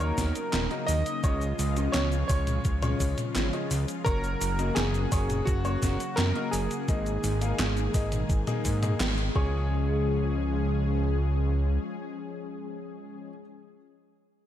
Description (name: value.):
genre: synthwave.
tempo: 85 BPM.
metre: 4/4.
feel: straight.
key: Db major.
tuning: A4 = 441 Hz.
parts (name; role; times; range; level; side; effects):
warm electric grand piano; melody; 0.0-13.3 s; Gb4 to Eb5; -35 LUFS; equal; tape echo.
soft synth bell; second line; 0.0-13.4 s; Gb5 to Eb6; -42 LUFS; right 1 dB; chorus, phaser, digital delay.
analog string pad; sustained chords; 0.0-13.3 s; Db3 to Ab4; -34 LUFS; left 2 dB; ensemble chorus, sidechain pumping.
clear grand piano; stabs; 0.0-13.4 s; Ab3 to F5; -36 LUFS; left 4 dB; digital delay.
fat analog bass; bass; 0.0-11.8 s; Eb1 to Ab2; -28 LUFS; equal; none.
gated 80s digital drum machine; drums; 0.0-9.3 s; handclaps, hi-hat, shaker, snare drum, toms; -32 LUFS; right 1 dB; gated reverb, gated reverb snare, overdrive.
electronic kick drum; drums; 0.2-9.5 s; none; -28 LUFS; equal; overdrive.
room: little or no reverb.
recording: none.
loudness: -25 LUFS.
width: side -11 dB against mid.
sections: 0.0-9.7 A section; 9.7-12.5 B section.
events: band accent 9.0-9.4.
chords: 0.0 Ebm7; 1.2 Db; 4.1 Gb; 6.9 Absus2; 9.4 Db.